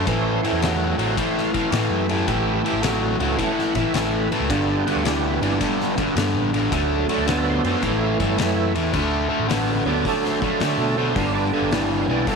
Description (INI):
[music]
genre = blues rock power trio and southern rock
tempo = 108 BPM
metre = 4/4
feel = swing 67% on 8ths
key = D major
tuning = A4 = 438 Hz
[part]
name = overdriven tonewheel organ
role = sustained chords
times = 0.0-12.4 s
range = E3 to F#5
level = -27 LUFS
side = right 14 dB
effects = slow rotary speaker, chorus vibrato
[part]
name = distorted electric guitar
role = riff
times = 0.0-12.4 s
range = G2 to B3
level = -21 LUFS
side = left 1 dB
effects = distortion
[part]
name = overdriven picked electric bass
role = bass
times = 0.0-12.2 s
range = G1 to D3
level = -26 LUFS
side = equal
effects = none
[part]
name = oversized low-tuned drum kit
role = drums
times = 0.1-12.4 s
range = crash cymbal, hi-hat, kick drum, ride cymbal, snare drum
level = -28 LUFS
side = left 5 dB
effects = none
[sound]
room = studio ambience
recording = 1960s-style stereo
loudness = -19 LUFS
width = side -5 dB against mid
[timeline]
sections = 0.0-8.9 A section; 8.9-12.4 A section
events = tonewheel organ solo 0.0-12.4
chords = 0.1 A; 4.5 G; 6.7 D; 7.8 A; 8.9 D; 11.2 G